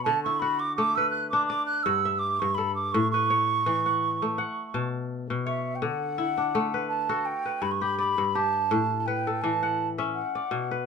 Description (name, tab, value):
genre	west african traditional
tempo	83 BPM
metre	4/4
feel	swing 54% on 16ths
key	D major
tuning	A4 = 440 Hz
part	breathy mellow wooden flute	melody	0.0-10.8 s	E5 to F#6	-26 LUFS	right 4 dB	none
part	kora	arpeggios	0.0-10.9 s	G2 to A5	-28 LUFS	left 4 dB	none
room	moderate studio ambience, RT60 0.5 s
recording	minimal, uncompressed stereo recording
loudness	-24 LUFS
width	side -6 dB against mid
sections	0.0-5.8 A section; 5.8-10.9 B section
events	flute solo 0.0-5.8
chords	0.0 D; 1.5 G5; 2.9 A; 4.4 B5; 5.8 D; 7.3 G; 8.7 A5; 10.1 Bm